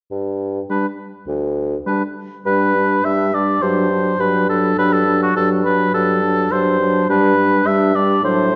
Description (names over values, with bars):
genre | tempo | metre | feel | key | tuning
quick classical-period movement for wind quintet | 104 BPM | 4/4 | rubato | G major | A4 = 440 Hz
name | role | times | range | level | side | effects
mellow bassoon | bass | 0.1-8.6 s | D2 to A2 | -23 LUFS | equal | none
warm oboe | second line | 0.7-8.6 s | F#4 to E5 | -20 LUFS | equal | none
clear clarinet | accompaniment | 0.7-8.6 s | D4 | -25 LUFS | equal | none
mellow French horn | accompaniment | 0.7-8.6 s | F#3 to G3 | -24 LUFS | equal | none
room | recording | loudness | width
wet recital hall reverb, RT60 1.7 s | worn, warbling old tape, cassette tape, warbly pitch drift, nothing above 7.7 kHz | -17 LUFS | mono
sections
0.1-2.5 A section; 2.5-8.6 B section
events
none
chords
0.1 G5; 2.5 G; 3.6 D/G; 7.1 G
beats
| 0.12 0.70 1.28 1.86 | 2.46 3.05 3.62 4.20 | 4.78 5.36 5.94 6.52 | 7.09 7.66 8.23